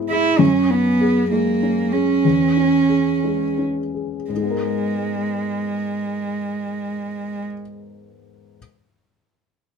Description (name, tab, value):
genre	neoclassical piano and strings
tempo	82-101 BPM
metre	3/4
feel	rubato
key	G# minor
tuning	A4 = 440 Hz
part	dark grand piano	accompaniment	0.0-8.6 s	E2 to A#4	-21 LUFS	left 4 dB	none
part	warm cello	second line	0.1-7.4 s	G#3 to E4	-20 LUFS	right 5 dB	none
room	light reverb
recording	minimal, uncompressed stereo recording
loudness	-18 LUFS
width	side -6 dB against mid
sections	0.0-4.3 A section; 4.3-8.6 B section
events	slowing down 0.0-4.3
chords	0.4 F#add9; 2.2 C#m/E; 4.3 G#madd9